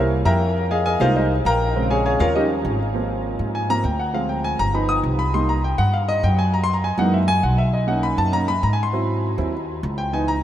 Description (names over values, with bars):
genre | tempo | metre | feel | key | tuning
Afro-Cuban jazz | 201 BPM | 4/4 | straight | unclear | A4 = 443 Hz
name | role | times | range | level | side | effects
warm concert grand piano | accompaniment | 0.0-10.4 s | Db3 to Eb6 | -20 LUFS | equal | none
upright bass | bass | 0.0-10.4 s | G1 to Ab2 | -22 LUFS | equal | none
room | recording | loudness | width
moderate huge ambient reverb, RT60 9.4 s | in a vast, echoing space, faint mains hum | -18 LUFS | side -11 dB against mid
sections
0.0-2.9 A section; 2.9-10.4 A section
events
grand piano solo 0.0-10.4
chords
0.0 C7; 0.6 Fm11; 1.8 Bbm7; 2.3 Eb9; 2.9 Ab6; 4.1 Dm7b5; 4.7 G7b13; 5.3 Cm7; 6.5 Gb13; 7.7 Bmaj9; 8.9 Ab7b13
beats
0.26 | 0.56 0.85 1.15 1.45 | 1.75 2.05 2.35 2.65 | 2.95 3.24 3.54 3.84 | 4.14 4.44 4.74 5.04 | 5.34 5.64 5.94 6.24 | 6.54 6.83 7.13 7.43 | 7.73 8.03 8.33 8.63 | 8.93 9.23 9.53 9.83 | 10.13 10.43